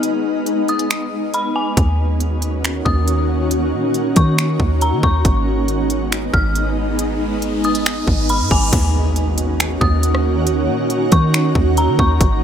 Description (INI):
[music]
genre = hip hop, atmospheric cloud-rap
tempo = 138 BPM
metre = 4/4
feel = half-time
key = Eb minor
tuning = A4 = 440 Hz
[part]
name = shimmering ambient pad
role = sustained chords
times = 0.0-12.4 s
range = Eb3 to Gb4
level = -19 LUFS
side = right 1 dB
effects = chorus, built-in reverb, sidechain pumping
[part]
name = trap drum kit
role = drums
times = 0.0-12.3 s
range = crash cymbal, finger snaps, hi-hat, kick drum, rim click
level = -18 LUFS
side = equal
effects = none
[part]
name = dark detuned synth bell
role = melody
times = 0.7-12.2 s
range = Ab5 to F6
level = -24 LUFS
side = left 2 dB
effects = chorus, ping-pong delay
[part]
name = soft 808-style bass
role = bass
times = 1.8-12.4 s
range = Ab1 to Eb3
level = -19 LUFS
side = equal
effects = none
[part]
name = riser and impact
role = sound effects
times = 6.8-10.5 s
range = none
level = -27 LUFS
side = right 1 dB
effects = none
[sound]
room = little or no reverb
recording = faint mains hum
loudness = -15 LUFS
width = side -8 dB against mid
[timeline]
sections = 0.0-8.7 A section; 8.7-12.4 B section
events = break 0.0-1.8; riser 6.8-8.7; impact 8.7-10.5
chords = 0.0 Abm; 1.8 Ebm7; 5.2 Abm; 8.7 Ebm7